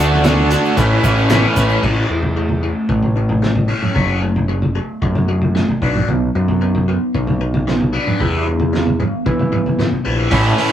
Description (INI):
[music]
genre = indie rock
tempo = 113 BPM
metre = 4/4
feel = straight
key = A mixolydian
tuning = A4 = 439 Hz
[part]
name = brassy analog pad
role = sustained chords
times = 0.0-1.8, 10.3-10.7 s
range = C#5 to E6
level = -28 LUFS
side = right 2 dB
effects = none
[part]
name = biting overdriven guitar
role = riff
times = 0.0-10.7 s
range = E3 to A4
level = -20 LUFS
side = left 1 dB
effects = phaser
[part]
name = distorted electric guitar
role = riff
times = 0.0-1.8, 10.3-10.7 s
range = A2 to F#4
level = -17 LUFS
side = right 2 dB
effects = overdrive
[part]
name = growling picked electric bass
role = bass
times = 0.0-10.5 s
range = F#1 to E3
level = -18 LUFS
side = equal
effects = overdrive
[part]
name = cloth-damped thuddy drum kit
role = drums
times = 0.1-10.7 s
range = crash cymbal, hi-hat, kick drum, snare drum, toms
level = -19 LUFS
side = equal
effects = none
[part]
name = egg shaker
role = percussion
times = 0.2-1.8 s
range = none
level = -36 LUFS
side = right 5 dB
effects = none
[sound]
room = moderate small room reverb, RT60 0.5 s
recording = rough rehearsal-room recording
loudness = -14 LUFS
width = side -10 dB against mid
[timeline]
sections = 0.0-1.8 A section; 1.8-10.3 B section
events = none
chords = 0.0 Dadd9; 0.8 Aadd9; 1.8 A; 4.0 F#m; 5.8 Bm; 8.2 Em